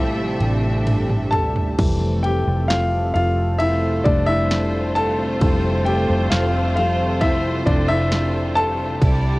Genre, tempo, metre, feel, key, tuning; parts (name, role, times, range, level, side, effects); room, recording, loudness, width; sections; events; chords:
pop ballad; 66 BPM; 4/4; straight; A4 = 440 Hz
rich studio violin section; second line; 0.0-9.4 s; G3 to E5; -28 LUFS; equal; cassette tape
warm grand piano; accompaniment; 0.0-9.4 s; C3 to A5; -21 LUFS; left 2 dB; cassette tape
warm analog pad; sustained chords; 0.0-9.4 s; C3 to A4; -26 LUFS; right 1 dB; chorus, cassette tape
vintage muted fingered electric bass; bass; 0.0-9.4 s; F1 to C2; -22 LUFS; equal
house drum kit; drums; 0.2-9.2 s; crash cymbal, kick drum, ride cymbal, snare drum, toms; -21 LUFS; equal; cassette tape
little or no reverb; home recording on cassette; -17 LUFS; side -21 dB against mid
0.0-1.8 A section; 1.8-9.4 A section
drum fill 0.0-1.8; grand piano solo 0.0-1.8, 1.8-9.4
0.0 Am7; 1.8 Fmaj7